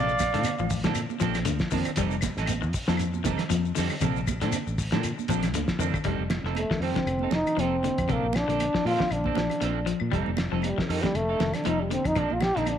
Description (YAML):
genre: afrobeat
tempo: 118 BPM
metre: 4/4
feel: swing 56% on 16ths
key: F mixolydian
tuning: A4 = 440 Hz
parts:
  - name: warm trumpet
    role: melody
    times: 0.0-0.7 s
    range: D5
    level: -29 LUFS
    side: equal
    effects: none
  - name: concert flute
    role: second line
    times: 0.0-0.7 s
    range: F5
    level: -33 LUFS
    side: right 8 dB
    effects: none
  - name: electric guitar at the edge of break-up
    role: arpeggios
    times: 0.0-12.8 s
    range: C3 to G3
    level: -32 LUFS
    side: left 10 dB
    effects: tape echo
  - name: electric guitar at the edge of break-up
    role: stabs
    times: 0.0-12.7 s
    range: F3 to A4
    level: -34 LUFS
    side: right 11 dB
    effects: analog chorus
  - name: fingered electric bass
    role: bass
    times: 0.0-12.8 s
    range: F1 to Bb2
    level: -30 LUFS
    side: equal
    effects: none
  - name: shekere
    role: percussion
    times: 0.1-6.1 s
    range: none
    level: -38 LUFS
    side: left 6 dB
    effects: none
  - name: cloth-damped thuddy drum kit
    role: drums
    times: 0.2-12.8 s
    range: hi-hat, kick drum, snare drum, toms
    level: -31 LUFS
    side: equal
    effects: none
  - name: claves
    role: percussion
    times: 0.2-12.8 s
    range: none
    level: -41 LUFS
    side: left 11 dB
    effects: none
  - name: congas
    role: percussion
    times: 0.2-12.8 s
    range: none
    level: -35 LUFS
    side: right 11 dB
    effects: none
  - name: breathy trombone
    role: melody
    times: 6.6-12.8 s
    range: C3 to G4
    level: -27 LUFS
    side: equal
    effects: none
room: light reverb, small room ambience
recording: 1960s-style stereo with parts hard left and right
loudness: -24 LUFS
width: side -9 dB against mid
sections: 0.0-6.1 A section; 6.1-12.8 B section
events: drum fill 5.8; trombone solo 6.1-12.8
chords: 0.0 Bbmaj9; 2.0 F9; 4.0 Bbmaj9; 6.1 F9; 8.1 Bbmaj9; 10.1 F9; 12.2 Bbmaj9